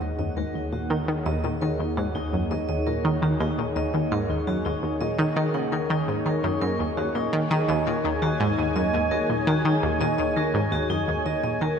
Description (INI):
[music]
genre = ambient, sequencer-driven space music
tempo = 84 BPM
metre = 4/4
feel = straight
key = Eb minor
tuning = A4 = 442 Hz
[part]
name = sweeping resonant pad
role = sustained chords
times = 0.0-11.8 s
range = Bb3 to Ab5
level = -28 LUFS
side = equal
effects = chorus, shimmer reverb
[part]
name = vibraphone with hard mallets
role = arpeggios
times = 0.0-11.7 s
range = Eb4 to Gb5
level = -31 LUFS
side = moving between left 2 dB and right 4 dB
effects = auto-pan, ping-pong delay, shimmer reverb
[part]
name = analog pluck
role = riff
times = 0.0-11.7 s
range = Eb2 to Eb3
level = -25 LUFS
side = equal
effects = chorus, ping-pong delay, shimmer reverb
[part]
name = analog drone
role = bass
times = 0.0-11.8 s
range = Eb2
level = -35 LUFS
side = equal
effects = chorus
[sound]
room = wet lush hall reverb, RT60 2.4 s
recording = dreamy mix soaked in reverb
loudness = -22 LUFS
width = side -7 dB against mid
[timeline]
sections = 0.0-11.8 A section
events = fade-in on vibraphone 0.0-11.8; fade-in on analog synth pad 0.0-11.8; fade-out 10.4-11.8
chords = 0.0 Ebm